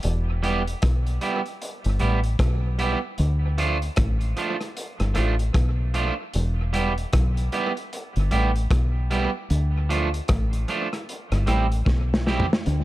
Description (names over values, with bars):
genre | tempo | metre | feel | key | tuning
roots reggae | 76 BPM | 4/4 | swing 59% on 16ths | unclear | A4 = 440 Hz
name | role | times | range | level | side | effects
deep dub fingered electric bass | bass | 0.0-12.8 s | E1 to D2 | -22 LUFS | equal | none
crunchy breakbeat drum kit | drums | 0.0-12.8 s | hi-hat, kick drum, rim click, snare drum, toms | -26 LUFS | equal | dub echo
electric guitar at the edge of break-up | accompaniment | 0.4-12.5 s | F3 to G4 | -27 LUFS | right 4 dB | dub echo
room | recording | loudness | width
little or no reverb | dark, warm production | -21 LUFS | side -16 dB against mid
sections
0.0-12.7 A section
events
drum fill 11.9-12.7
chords
0.0 Em; 3.2 Dm; 6.3 Em; 9.5 Dm; 11.1 C